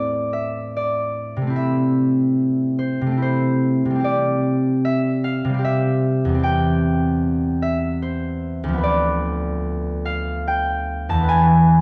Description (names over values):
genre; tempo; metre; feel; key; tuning
classical, solo harp piece; 74 BPM; 3/4; rubato; unclear; A4 = 439 Hz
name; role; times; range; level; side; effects
concert harp; solo; 0.0-11.8 s; D2 to A5; -20 LUFS; equal; none
room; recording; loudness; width
wet recital hall reverb, RT60 1.5 s; none; -20 LUFS; mono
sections
0.0-11.8 A section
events
none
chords
0.0 Am; 1.6 Am/C; 4.0 C; 6.4 C/E; 8.8 Bdim/D; 11.3 E